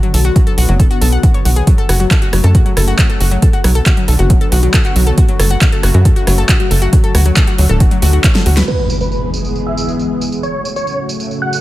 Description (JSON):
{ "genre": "uplifting trance", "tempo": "137 BPM", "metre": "4/4", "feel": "straight", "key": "F# minor", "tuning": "A4 = 441 Hz", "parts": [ { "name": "lush unison pad", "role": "sustained chords", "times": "0.0-11.6 s", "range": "C#3 to G#4", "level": "-22 LUFS", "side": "equal", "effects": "chorus, phaser, sidechain pumping" }, { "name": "analog pluck", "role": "arpeggios", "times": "0.0-8.6 s", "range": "F#3 to F#5", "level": "-20 LUFS", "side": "left 3 dB", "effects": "chorus, sidechain pumping, dub echo" }, { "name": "big-room dance drum kit", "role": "drums", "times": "0.0-11.6 s", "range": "crash cymbal, handclaps, hi-hat, rim click, snare drum, tambourine", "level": "-19 LUFS", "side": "right 1 dB", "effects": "overdrive, low-pass filter on hats, low-pass filter on snare, low-pass filter on perc, low-pass filter on cymbals" }, { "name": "tight sequencer bass", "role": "bass", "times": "0.1-8.6 s", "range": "D1 to F#2", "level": "-11 LUFS", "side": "equal", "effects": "sidechain pumping" }, { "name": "electronic kick drum", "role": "drums", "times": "0.4-8.3 s", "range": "none", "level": "-12 LUFS", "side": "equal", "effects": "none" }, { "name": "big supersaw lead", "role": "melody", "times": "8.7-11.6 s", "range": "B4 to F#5", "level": "-21 LUFS", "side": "right 1 dB", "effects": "phaser, sidechain pumping, low-pass filter, dub echo" }, { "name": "impact", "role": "sound effects", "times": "8.7-10.4 s", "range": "none", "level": "-21 LUFS", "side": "equal", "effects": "none" } ], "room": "digital ambience", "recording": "none", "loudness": "-10 LUFS", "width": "side -16 dB against mid", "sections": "0.0-8.7 A section; 8.7-11.6 B section", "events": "filter sweep on analog synth pad 0.0-8.7; drum fill 8.4-8.7; impact 8.7-10.4; filter sweep on supersaw synth 8.7-11.6", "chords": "0.0 Bm; 1.7 F#m; 3.4 Bm; 5.2 F#m; 6.9 D; 8.7 E; 10.4 F#m" }